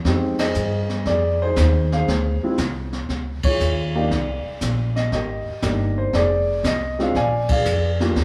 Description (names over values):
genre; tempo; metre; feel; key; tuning
jazz piano trio; 118 BPM; 4/4; swing 68% on 8ths; unclear; A4 = 440 Hz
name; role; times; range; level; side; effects
upright bass; bass; 0.0-8.2 s; F1 to G2; -25 LUFS; equal; none
jazz brush drum kit; drums; 0.0-8.2 s; brushed snare drum, hi-hat, kick drum, ride cymbal, snare drum; -28 LUFS; equal; none
warm grand piano; melody; 0.1-8.2 s; G3 to Ab5; -25 LUFS; equal; none
room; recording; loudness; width
moderate stone room reverb, RT60 1.4 s; band playing live in one room, small room ambience; -21 LUFS; mono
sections
0.0-8.2 A section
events
band accent 0.3, 3.4, 7.4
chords
0.1 Fm7; 2.1 Dm7b5; 3.1 Db69; 4.1 Cm9; 6.1 Fm; 7.2 Bb7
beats
| 0.06 0.56 1.07 1.58 | 2.08 2.59 3.10 3.60 | 4.11 4.62 5.12 5.63 | 6.14 6.64 7.15 7.66 | 8.16